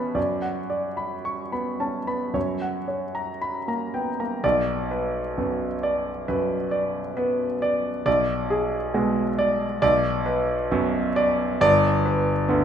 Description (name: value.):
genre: classical, romantic character piece for solo piano.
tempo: 54-72 BPM.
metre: 4/4.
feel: rubato.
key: unclear.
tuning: A4 = 441 Hz.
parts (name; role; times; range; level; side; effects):
clear concert grand piano; solo; 0.0-12.6 s; G1 to C#6; -22 LUFS; equal; none.
room: moderate recital hall reverb, RT60 1.5 s.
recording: minimal, uncompressed stereo recording.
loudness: -22 LUFS.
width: side -8 dB against mid.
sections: 0.0-4.4 A section; 4.4-12.6 B section.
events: none.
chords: 0.2 Bm/F#; 2.4 F#; 4.4 Bm; 8.1 Bm6; 9.8 Bm; 11.6 G.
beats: | 0.17 1.26 2.35 3.41 | 4.43 5.37 6.28 7.17 | 8.07 8.94 9.82 10.71 | 11.62 12.49.